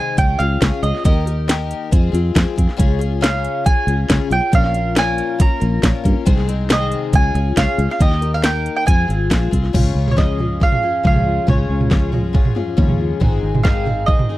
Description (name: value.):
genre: indie folk with a building arrangement.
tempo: 138 BPM.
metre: 4/4.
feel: straight.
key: unclear.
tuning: A4 = 436 Hz.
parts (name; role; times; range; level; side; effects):
mandolin; melody; 0.0-14.4 s; Db5 to Bb5; -21 LUFS; right 3 dB; none.
picked twelve-string acoustic guitar; accompaniment; 0.0-14.4 s; Ab2 to Bb4; -24 LUFS; left 8 dB; none.
fingered electric bass; bass; 0.2-14.1 s; Ab1 to G2; -19 LUFS; equal; none.
garage drum kit; drums; 0.2-14.3 s; crash cymbal, hi-hat, kick drum, snare drum, toms; -16 LUFS; equal; none.
fingerpicked steel-string acoustic guitar; accompaniment; 9.7-14.4 s; Ab2 to Ab4; -25 LUFS; left 2 dB; none.
room: little or no reverb.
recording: dry, close 1970s-style studio recording.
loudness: -14 LUFS.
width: side -16 dB against mid.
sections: 0.0-9.7 A section; 9.7-14.4 B section.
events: none.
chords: 0.2 Db; 1.1 Eb; 1.9 Fm; 2.8 Db; 4.5 Bbm; 6.3 Ab/C; 7.1 Db; 8.0 Eb; 8.9 Fm; 9.7 Db; 13.2 Ab.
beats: 0.18 0.61 | 1.05 1.49 1.92 2.35 | 2.79 3.22 3.66 4.09 | 4.53 4.96 5.40 5.83 | 6.26 6.70 7.13 7.57 | 8.00 8.44 8.87 9.30 | 9.74 10.17 10.61 11.04 | 11.48 11.91 12.35 12.78 | 13.21 13.65 14.08.